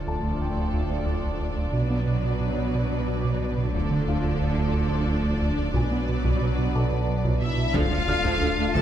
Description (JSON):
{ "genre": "cinematic, hybrid orchestral and electronic film score", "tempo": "60 BPM (dotted quarters)", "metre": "6/8", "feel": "straight", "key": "unclear", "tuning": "A4 = 440 Hz", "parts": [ { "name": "warm symphonic violin section", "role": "second line", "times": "0.0-8.8 s", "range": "A4 to A5", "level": "-34 LUFS", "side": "left 2 dB", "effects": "none" }, { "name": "warm symphonic viola section", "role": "accompaniment", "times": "0.0-8.8 s", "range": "D3 to D4", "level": "-33 LUFS", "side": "right 1 dB", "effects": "none" }, { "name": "phased analog pad", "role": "sustained chords", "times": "0.0-8.8 s", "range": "F#3 to D5", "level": "-32 LUFS", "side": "right 1 dB", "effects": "phaser, chorus" }, { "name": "dark symphonic double bass section", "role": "bass", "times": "0.0-8.8 s", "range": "B1 to D2", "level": "-30 LUFS", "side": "right 2 dB", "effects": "none" }, { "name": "sub bass with octave", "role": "bass", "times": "0.0-8.8 s", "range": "D1 to B1", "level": "-32 LUFS", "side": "left 1 dB", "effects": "none" }, { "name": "warm symphonic cello section", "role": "bass", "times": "0.0-8.8 s", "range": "D2 to D3", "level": "-34 LUFS", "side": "right 2 dB", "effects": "none" }, { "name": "round analog bass", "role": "riff", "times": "0.1-8.8 s", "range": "D2 to B3", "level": "-28 LUFS", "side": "right 2 dB", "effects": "none" }, { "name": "warm grand piano", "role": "texture", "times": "0.1-8.8 s", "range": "F4 to F6", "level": "-38 LUFS", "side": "left 4 dB", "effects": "tape echo" }, { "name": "taiko ensemble", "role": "drums", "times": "1.2-8.8 s", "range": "none", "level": "-31 LUFS", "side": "equal", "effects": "none" }, { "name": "rich cello", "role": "melody", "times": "7.4-8.8 s", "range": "E4 to A4", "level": "-29 LUFS", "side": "right 2 dB", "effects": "none" }, { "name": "warm symphonic violin section", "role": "melody", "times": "7.4-8.8 s", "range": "E5 to A5", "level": "-32 LUFS", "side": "left 5 dB", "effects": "none" }, { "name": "mellow French horn section", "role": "sustained chords", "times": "7.7-8.8 s", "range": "D4 to F4", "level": "-33 LUFS", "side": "left 8 dB", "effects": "none" }, { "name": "warm tuba", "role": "bass", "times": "7.7-8.8 s", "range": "D2", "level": "-32 LUFS", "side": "right 3 dB", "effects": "none" }, { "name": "impact", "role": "sound effects", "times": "7.7-8.8 s", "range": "none", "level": "-34 LUFS", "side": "left 1 dB", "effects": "none" } ], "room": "light reverb", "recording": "close, detailed microphones", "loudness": "-22 LUFS", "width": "side -10 dB against mid", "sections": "0.0-7.7 A section; 7.7-8.8 B section", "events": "impact 7.7-8.8", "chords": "0.0 Dm; 1.7 Bm; 3.7 Dm; 5.7 Bm; 7.7 Dm", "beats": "0.74 | 1.74 2.74 | 3.74 4.74 | 5.74 6.74 | 7.74 8.74" }